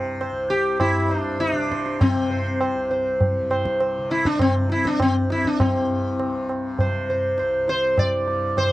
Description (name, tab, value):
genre	indian classical, Hindustani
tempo	100 BPM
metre	3/4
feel	straight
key	C raga hamsadhwani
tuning	A4 = 440 Hz
part	tanpura	drone	0.0-8.7 s	C2 to C3	-32 LUFS	left 1 dB	none
part	sitar	melody	0.2-8.7 s	C4 to D5	-21 LUFS	equal	none
part	tabla	percussion	0.2-8.7 s	none	-24 LUFS	right 1 dB	none
room	moderate booth ambience, RT60 0.2 s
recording	cassette tape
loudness	-19 LUFS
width	side -16 dB against mid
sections	0.0-5.6 A section; 5.6-8.7 B section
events	none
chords	none